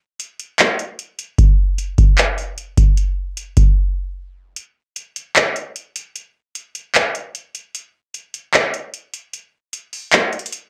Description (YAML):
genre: hip hop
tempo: 151 BPM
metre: 4/4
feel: half-time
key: none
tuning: none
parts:
  - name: booming analog drum machine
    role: drums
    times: 0.2-10.6 s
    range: handclaps, hi-hat, kick drum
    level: -17 LUFS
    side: equal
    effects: none
room: light reverb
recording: cassette tape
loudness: -17 LUFS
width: mono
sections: 0.0-4.6 A section; 4.6-10.7 B section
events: break 3.8-4.6, 4.6-10.7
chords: none